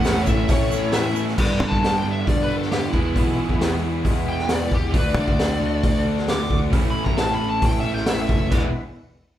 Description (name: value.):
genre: classic rock.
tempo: 134 BPM.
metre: 4/4.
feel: straight.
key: unclear.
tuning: A4 = 441 Hz.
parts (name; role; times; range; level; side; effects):
smooth overdriven lead guitar; melody; 0.0-8.5 s; E4 to D6; -26 LUFS; left 1 dB; none.
picked old ladder-braced acoustic guitar; accompaniment; 0.0-8.7 s; E2 to F#4; -33 LUFS; left 5 dB; none.
tonewheel organ; sustained chords; 0.0-8.8 s; G#3 to E5; -39 LUFS; equal; none.
crunchy overdriven guitar; riff; 0.0-8.7 s; E2 to G#4; -26 LUFS; right 6 dB; none.
distorted electric guitar; riff; 0.0-8.7 s; E2 to F#4; -29 LUFS; left 7 dB; distortion.
overdriven electric guitar; riff; 0.0-1.4 s; A2 to A3; -28 LUFS; equal; none.
fuzz picked electric bass; bass; 0.0-8.7 s; E1 to G3; -26 LUFS; equal; overdrive.
egg shaker; percussion; 0.0-1.3 s; none; -41 LUFS; right 7 dB; none.
raw garage drum kit; drums; 0.1-8.6 s; crash cymbal, hi-hat, kick drum, snare drum; -22 LUFS; equal; none.
room: moderate large studio reverb, RT60 0.8 s.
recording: band playing live in one room.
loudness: -18 LUFS.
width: side -12 dB against mid.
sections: 0.0-1.4 A section; 1.4-8.5 B section.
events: lead electric guitar solo 1.4-8.5.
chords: 0.0 A; 1.4 G6; 2.9 E; 4.9 D; 6.7 A; 8.5 E.